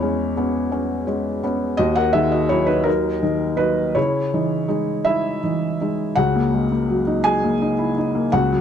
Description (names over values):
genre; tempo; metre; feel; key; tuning
neoclassical minimalist piano; 55 BPM (dotted quarters); 6/8; rubato; unclear; A4 = 440 Hz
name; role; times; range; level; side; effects
felt-muted upright piano; solo; 0.0-8.6 s; C#2 to G#5; -18 LUFS; equal; none
room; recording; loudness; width
light reverb; dark, warm production; -18 LUFS; side -8 dB against mid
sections
0.0-6.2 A section; 6.2-8.6 B section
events
none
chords
0.0 C#m7/E; 1.8 D#m; 4.0 C#madd9; 6.2 D#m/C#